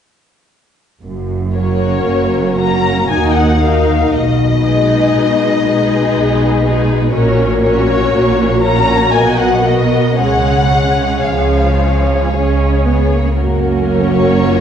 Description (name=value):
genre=classical, slow romantic movement for symphony orchestra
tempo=55-61 BPM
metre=3/4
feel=rubato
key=F# major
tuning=A4 = 438 Hz
part: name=mellow French horn section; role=sustained chords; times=1.0-14.6 s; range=G#3 to G#4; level=-19 LUFS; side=left 3 dB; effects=none
part: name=dark symphonic cello section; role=bass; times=1.0-14.6 s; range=D#2 to C#3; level=-19 LUFS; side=right 2 dB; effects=none
part: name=warm symphonic double bass section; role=bass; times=1.0-14.6 s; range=F#1 to D#2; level=-17 LUFS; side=right 1 dB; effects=none
part: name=dark symphonic violin section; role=melody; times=1.6-14.6 s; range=C#5 to A#5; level=-18 LUFS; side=left 3 dB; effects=none
part: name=dark symphonic violin section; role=second line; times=1.6-14.6 s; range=F#4 to D#5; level=-20 LUFS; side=left 2 dB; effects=none
part: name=dark studio viola section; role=accompaniment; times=1.6-14.6 s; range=E#3 to F#4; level=-18 LUFS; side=right 2 dB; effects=none
room=wet scoring stage reverb, RT60 1.9 s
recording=heard from further back in the room, nothing above 10.5 kHz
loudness=-11 LUFS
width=side -8 dB against mid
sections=1.0-14.6 A section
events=none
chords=1.0 F#; 3.1 D#m; 4.1 G#m/B; 7.1 F#/A#; 9.1 Bmaj7; 10.2 C#; 13.4 F#